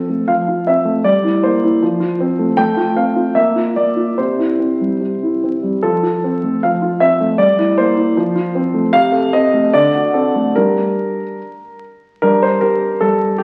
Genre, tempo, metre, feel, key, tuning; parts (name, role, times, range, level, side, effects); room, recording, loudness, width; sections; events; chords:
classical-period piano sonatina; 71-80 BPM; 2/4; rubato; F major, G minor from 8.9 s; A4 = 439 Hz
warm concert grand piano; solo; 0.0-13.4 s; C3 to G5; -16 LUFS; equal
wet recital hall reverb, RT60 1.5 s; very old 78 rpm record, vinyl crackle; -15 LUFS; mono
0.0-12.2 A section; 12.2-13.4 B section
0.0 F; 1.1 Edim/G; 1.8 F; 2.6 F/A; 3.4 Bb; 4.2 C; 5.8 F; 7.4 Edim/G; 8.1 F; 8.9 Adim/C; 9.7 D7; 10.5 G5